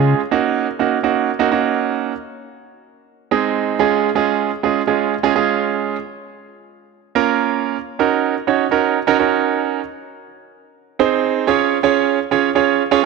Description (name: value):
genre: pop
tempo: 125 BPM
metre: 4/4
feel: straight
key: Eb dorian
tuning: A4 = 440 Hz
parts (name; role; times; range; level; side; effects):
- warm concert grand piano; accompaniment; 0.0-13.0 s; Ab3 to Db5; -16 LUFS; right 10 dB; none
room: moderate plate reverb, RT60 3.0 s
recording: 1960s-style stereo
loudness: -15 LUFS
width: side -3 dB against mid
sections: 0.2-13.1 A section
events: build-up 0.2-13.1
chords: 0.2 Ebm7; 2.1 Ab; 3.8 Db; 6.0 Bbm; 7.9 Ebm7; 9.8 Ab; 11.5 Db